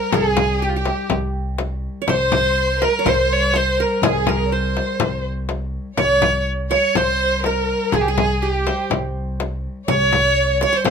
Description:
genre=Arabic maqam ensemble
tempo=123 BPM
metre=4/4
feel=straight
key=C maqam hijaz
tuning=A4 = 440 Hz
part: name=rich violin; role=melody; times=0.0-10.9 s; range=F4 to Db5+29c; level=-20 LUFS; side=right 1 dB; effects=none
part: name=qanun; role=second line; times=0.0-10.9 s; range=G4 to Db5+25c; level=-25 LUFS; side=right 6 dB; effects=none
part: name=rich studio violin section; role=second line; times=0.0-10.9 s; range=G4 to Db5+25c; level=-25 LUFS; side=equal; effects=none
part: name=rich cello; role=drone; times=0.0-10.9 s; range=C2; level=-30 LUFS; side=left 4 dB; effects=none
part: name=upright bass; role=bass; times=0.1-10.9 s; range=C2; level=-24 LUFS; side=equal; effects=none
part: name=frame drum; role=percussion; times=0.1-10.9 s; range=none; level=-22 LUFS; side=left 6 dB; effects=none
room=light reverb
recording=minimal, uncompressed stereo recording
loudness=-17 LUFS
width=side -6 dB against mid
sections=0.0-10.9 A section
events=none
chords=none

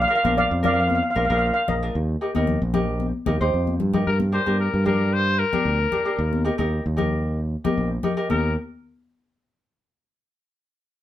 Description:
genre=calypso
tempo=113 BPM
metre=4/4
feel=straight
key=Eb major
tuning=A4 = 439 Hz
part: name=steel pan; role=melody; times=0.0-3.5 s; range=Bb4 to F5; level=-21 LUFS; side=equal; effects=none
part: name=overdriven fingered electric bass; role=bass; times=0.0-8.5 s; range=Bb1 to G2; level=-23 LUFS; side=equal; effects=none
part: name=ukulele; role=accompaniment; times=0.1-8.5 s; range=D4 to C5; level=-27 LUFS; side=equal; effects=none
part: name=congas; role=percussion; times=0.2-8.5 s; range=none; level=-28 LUFS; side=left 4 dB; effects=none
part: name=clear trumpet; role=second line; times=4.1-8.5 s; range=Bb4 to C5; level=-24 LUFS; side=left 3 dB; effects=none
room=moderate small room reverb, RT60 0.5 s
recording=band playing live in one room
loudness=-20 LUFS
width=side -12 dB against mid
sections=0.0-4.1 A section; 4.1-8.3 B section; 8.3-10.4 C section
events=drum fill 3.7-4.1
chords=0.0 Bb; 2.0 Eb; 4.1 Gm; 6.2 Eb

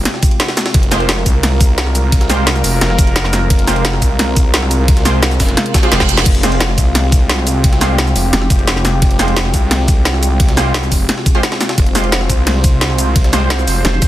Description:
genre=dark technical drum and bass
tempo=174 BPM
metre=4/4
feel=straight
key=F minor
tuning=A4 = 441 Hz
part: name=sweeping resonant pad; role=sustained chords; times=0.0-14.1 s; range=C3 to C5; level=-20 LUFS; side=equal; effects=wide subtle chorus, sidechain pumping
part: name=snarling distorted saw bass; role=bass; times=0.0-14.1 s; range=F1 to C2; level=-16 LUFS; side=equal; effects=distortion, sidechain pumping
part: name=drum and bass drum kit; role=drums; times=0.1-14.1 s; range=crash cymbal, hi-hat, shaker, snare drum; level=-16 LUFS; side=equal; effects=overdrive, studio reverb
part: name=jungle sampler-style drum kit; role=drums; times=0.1-14.1 s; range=ride cymbal, snare drum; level=-24 LUFS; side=right 1 dB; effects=high-pass filter on cymbals, studio reverb, high-pass filter on snare, high-pass filter on room
part: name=electronic kick drum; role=drums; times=0.2-14.1 s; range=none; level=-13 LUFS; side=equal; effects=overdrive, studio reverb
part: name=orchestra-hit-like synth stab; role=stabs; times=0.9-13.5 s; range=Ab3 to C5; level=-21 LUFS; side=right 2 dB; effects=built-in reverb, digital delay
part: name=reverse cymbal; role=sound effects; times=5.7-6.3 s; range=none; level=-21 LUFS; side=right 7 dB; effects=none
part: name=vowel-sweep wobble bass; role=bass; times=8.3-8.5, 13.8-14.0 s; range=F1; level=-15 LUFS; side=equal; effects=chorus, tube saturation
room=little or no reverb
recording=dense, heavily limited modern master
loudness=-11 LUFS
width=side -14 dB against mid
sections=0.0-14.1 A section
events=reverse cymbal 5.7-6.3; drum fill 5.9-6.3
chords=0.0 Fmadd9

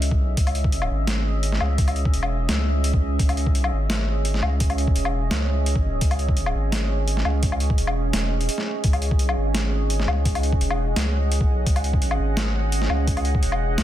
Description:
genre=half-time drum and bass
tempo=170 BPM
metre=4/4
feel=swing 53% on 16ths, half-time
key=C# minor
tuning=A4 = 440 Hz
part: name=deep dark ambient pad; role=sustained chords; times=0.0-13.8 s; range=C#4 to F#5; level=-28 LUFS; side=right 2 dB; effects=chorus, built-in reverb, sidechain pumping
part: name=saturated sub bass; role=bass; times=0.0-13.8 s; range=E1 to C#2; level=-23 LUFS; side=equal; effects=none
part: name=boom bap sampler-style drum kit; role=drums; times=0.0-13.8 s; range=hi-hat, snare drum, woodblock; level=-27 LUFS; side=left 1 dB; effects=overdrive, studio reverb
part: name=electronic kick drum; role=drums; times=0.1-13.4 s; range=none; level=-21 LUFS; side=equal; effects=overdrive, studio reverb
room=little or no reverb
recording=dense, heavily limited modern master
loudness=-20 LUFS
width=side -12 dB against mid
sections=0.0-13.8 A section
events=break 8.5-8.8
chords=0.0 C#m

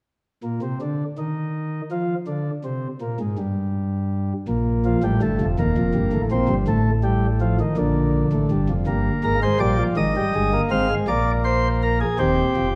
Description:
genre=classical, baroque-style 4-part fugue for pipe organ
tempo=54 BPM (dotted quarters)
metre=6/8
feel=straight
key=unclear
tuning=A4 = 439 Hz
part: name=chamber organ, principal chorus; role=solo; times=0.4-12.8 s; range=Eb1 to F5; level=-22 LUFS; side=equal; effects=none
room=wet scoring stage reverb, RT60 1.6 s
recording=none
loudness=-22 LUFS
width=mono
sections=0.1-12.8 A section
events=none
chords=0.1 N.C.; 4.5 Bb5; 5.6 Cm7/Eb; 6.7 F7/A; 7.8 Bb; 8.9 Bb13/G; 10.0 Fm7; 11.1 Bb7; 12.2 Eb

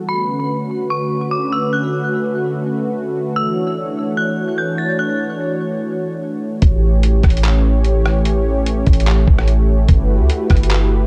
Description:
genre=hip hop, atmospheric cloud-rap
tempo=147 BPM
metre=4/4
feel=half-time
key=unclear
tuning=A4 = 439 Hz
part: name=warm analog pad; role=sustained chords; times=0.0-11.1 s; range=D3 to C#5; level=-22 LUFS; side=equal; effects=chorus, sidechain pumping
part: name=dark detuned synth bell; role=melody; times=0.1-5.4 s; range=B5 to A6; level=-26 LUFS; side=equal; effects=chorus, tremolo, low-pass filter, tape echo
part: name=warm 808-style bass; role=bass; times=6.6-11.1 s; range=G1 to D2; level=-16 LUFS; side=equal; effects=none
part: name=lo-fi sampler-style drum kit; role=drums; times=6.6-10.8 s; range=handclaps, hi-hat, kick drum, rim click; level=-18 LUFS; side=equal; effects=none
room=little or no reverb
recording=echo-heavy mix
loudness=-17 LUFS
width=mono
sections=0.0-6.6 A section; 6.6-11.1 B section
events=none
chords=0.1 Bm9; 3.4 Dmaj9; 6.6 A7; 9.9 Gmaj13

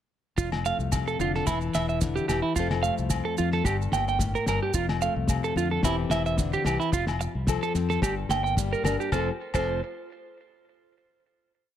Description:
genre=highlife guitar band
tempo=110 BPM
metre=4/4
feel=swing 54% on 16ths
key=F major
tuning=A4 = 437 Hz
part: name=nylon-string guitar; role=accompaniment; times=0.4-9.8 s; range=F2 to A4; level=-31 LUFS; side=left 7 dB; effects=none
part: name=electric guitar at the edge of break-up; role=arpeggios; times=0.4-9.8 s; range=E4 to G5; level=-28 LUFS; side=right 6 dB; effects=tape echo
part: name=fingered electric bass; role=bass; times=0.4-9.8 s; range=E1 to F2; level=-30 LUFS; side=equal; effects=none
part: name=cloth-damped thuddy drum kit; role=drums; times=0.4-9.7 s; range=crash cymbal, kick drum, snare drum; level=-29 LUFS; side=equal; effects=none
part: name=maracas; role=percussion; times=0.4-9.8 s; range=none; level=-38 LUFS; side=right 14 dB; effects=none
part: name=agogo bells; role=percussion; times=0.5-9.7 s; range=none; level=-36 LUFS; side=left 11 dB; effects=none
room=light reverb, studio reverb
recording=none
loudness=-24 LUFS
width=side -10 dB against mid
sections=0.4-9.1 groove; 9.1-11.3 final chord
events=none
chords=0.4 F; 1.5 Em7; 2.6 F; 3.7 Gm; 4.7 F; 5.8 C/E; 6.9 F; 8.0 Gm; 9.1 F

